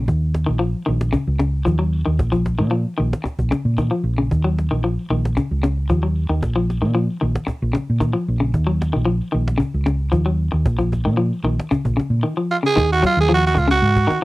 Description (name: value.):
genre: afrobeat.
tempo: 114 BPM.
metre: 4/4.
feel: straight.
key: Eb minor.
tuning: A4 = 440 Hz.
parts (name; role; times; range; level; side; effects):
electric guitar at the edge of break-up; arpeggios; 0.0-14.2 s; Db3 to Gb3; -22 LUFS; left 2 dB; none.
hollow-body short-scale fingered electric bass; bass; 0.0-14.1 s; Bb1 to Bb2; -19 LUFS; equal; none.
cajon; drums; 0.1-14.2 s; none; -25 LUFS; equal; none.
growling tenor saxophone; melody; 12.5-14.2 s; F4 to Ab4; -17 LUFS; right 3 dB; none.
room: little or no reverb.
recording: dry, close 1970s-style studio recording.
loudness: -17 LUFS.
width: side -19 dB against mid.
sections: 0.0-12.8 A section; 12.8-14.2 B section.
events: none.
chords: 0.1 Eb7sus2; 2.2 Bbm; 4.3 Ebm9; 6.4 Bbm; 8.5 Ebm9; 10.7 Bbm; 12.8 Ebm11.